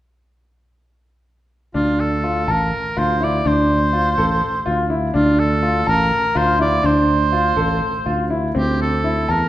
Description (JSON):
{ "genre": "contemporary instrumental, chamber music in an uneven meter", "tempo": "247 BPM (eighths)", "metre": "7/8", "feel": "straight", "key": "D minor", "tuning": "A4 = 440 Hz", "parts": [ { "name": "clear oboe", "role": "melody", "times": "1.7-9.5 s", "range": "F4 to D5", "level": "-20 LUFS", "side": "right 1 dB", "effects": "none" }, { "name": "warm grand piano", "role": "arpeggios", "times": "1.7-9.5 s", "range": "C4 to A5", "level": "-20 LUFS", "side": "left 1 dB", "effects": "none" }, { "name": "sustaining fretless electric bass", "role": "bass", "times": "1.8-9.5 s", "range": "A1 to E2", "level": "-21 LUFS", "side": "equal", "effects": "none" } ], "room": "wet recital hall reverb, RT60 1.5 s", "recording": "recorded in a church or concert hall, faint mains hum", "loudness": "-16 LUFS", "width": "side -14 dB against mid", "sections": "1.7-9.5 A section", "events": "none", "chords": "1.7 Dm7; 8.6 Am/D" }